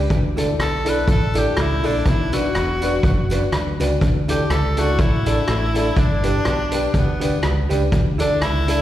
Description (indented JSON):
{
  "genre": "ska",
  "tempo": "123 BPM",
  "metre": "4/4",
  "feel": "swing 55% on 8ths",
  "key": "D major",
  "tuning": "A4 = 440 Hz",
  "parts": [
    { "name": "dark upright piano", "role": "stabs", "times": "0.0-8.8 s", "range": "D4 to B4", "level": "-26 LUFS", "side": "left 5 dB", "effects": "tape echo, slapback echo" },
    { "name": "fingered electric bass", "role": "bass", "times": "0.0-8.8 s", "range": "E1 to D2", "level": "-22 LUFS", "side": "equal", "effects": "none" },
    { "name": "street-band drum kit", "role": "drums", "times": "0.1-8.8 s", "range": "hi-hat, kick drum, rim click", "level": "-22 LUFS", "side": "equal", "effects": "none" },
    { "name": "vintage hollow-body jazz guitar", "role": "accompaniment", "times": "0.4-8.8 s", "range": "E4 to D5", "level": "-26 LUFS", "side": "right 4 dB", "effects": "tape echo, slapback echo" },
    { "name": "tambourine", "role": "percussion", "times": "0.4-8.8 s", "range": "none", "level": "-43 LUFS", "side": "left 1 dB", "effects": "none" },
    { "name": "bright tenor saxophone", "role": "melody", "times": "0.6-8.8 s", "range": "B3 to B4", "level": "-24 LUFS", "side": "left 1 dB", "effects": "tape echo, slapback echo" }
  ],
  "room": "light reverb, small room ambience",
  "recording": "live gig heard through the venue's PA, recital hall reverb",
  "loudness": "-17 LUFS",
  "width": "side -12 dB against mid",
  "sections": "0.0-8.8 A section",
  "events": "tenor saxophone solo 0.0-8.8",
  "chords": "0.1 Dsus2; 2.1 Bm; 4.0 Dsus2; 6.0 G; 7.9 Dsus2"
}